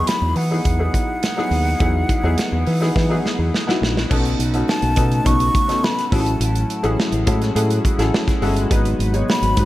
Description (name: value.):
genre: polished 1980s jazz-funk pop.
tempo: 104 BPM.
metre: 4/4.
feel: straight.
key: unclear.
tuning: A4 = 437 Hz.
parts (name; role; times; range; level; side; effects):
breathy hollow jazz flute; melody; 0.0-9.7 s; F#5 to C#6; -24 LUFS; equal; none.
clear concert grand piano; accompaniment; 0.0-9.7 s; F#3 to C#5; -22 LUFS; left 2 dB; analog chorus.
modern studio drum kit; drums; 0.1-9.7 s; crash cymbal, hi-hat, kick drum, snare drum; -21 LUFS; equal; gated reverb.
fingered electric bass; bass; 0.2-9.7 s; G1 to E3; -20 LUFS; equal; none.
warm analog pad; sustained chords; 4.1-9.7 s; A2 to F#4; -29 LUFS; equal; none.
room: small room ambience.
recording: none.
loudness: -16 LUFS.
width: side -15 dB against mid.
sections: 0.0-4.1 A section; 4.1-9.7 B section.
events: drum fill 3.0-4.1.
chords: 0.0 Emaj9; 4.1 B9; 6.1 F#m9/A; 8.7 G#m7.